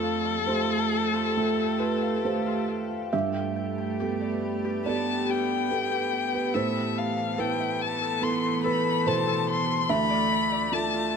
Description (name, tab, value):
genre	neoclassical piano and strings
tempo	67-72 BPM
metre	4/4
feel	rubato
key	A minor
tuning	A4 = 440 Hz
part	warm violin	melody	0.0-11.2 s	A4 to C6	-28 LUFS	left 6 dB	none
part	rich cello	second line	0.0-11.2 s	A3 to B3	-32 LUFS	right 6 dB	none
part	felt-muted upright piano	accompaniment	0.0-11.2 s	D2 to E5	-29 LUFS	right 4 dB	none
part	evolving wavetable pad	sustained chords	0.0-11.2 s	E3 to B4	-34 LUFS	left 2 dB	chorus, built-in reverb
part	Celtic harp	arpeggios	0.0-11.2 s	D4 to C6	-34 LUFS	left 8 dB	tape echo
room	moderate recital hall reverb, RT60 1.3 s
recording	none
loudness	-24 LUFS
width	side -6 dB against mid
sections	0.0-11.2 A section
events	none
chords	0.0 Fadd9; 3.1 Gadd9; 6.5 Amadd9; 9.9 Dmadd9